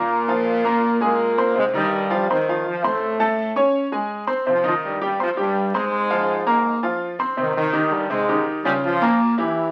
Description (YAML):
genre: latin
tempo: 165 BPM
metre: 4/4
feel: straight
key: unclear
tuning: A4 = 440 Hz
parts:
  - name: brilliant trombone section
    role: melody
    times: 0.0-9.7 s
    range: G2 to F4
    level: -24 LUFS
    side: equal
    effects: none
  - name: bright upright piano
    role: accompaniment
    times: 0.0-9.7 s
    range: Bb2 to Db6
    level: -23 LUFS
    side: equal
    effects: none
room: wet small room reverb, RT60 0.6 s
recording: very old 78 rpm record, vinyl crackle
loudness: -21 LUFS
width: mono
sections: 0.0-7.4 A section; 7.4-9.7 B section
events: none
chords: 0.1 Bb5; 0.8 Abadd9/Bb; 1.6 F7sus2; 3.0 Am; 3.7 Db5; 4.5 Cm; 5.9 Fm; 7.4 Abmaj7; 8.8 Gm7b5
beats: | 0.10 0.46 0.83 1.19 | 1.55 1.92 2.28 2.65 | 3.01 3.38 3.74 4.11 | 4.47 4.83 5.20 5.56 | 5.92 6.29 6.65 7.02 | 7.38 7.74 8.11 8.47 | 8.84 9.20 9.56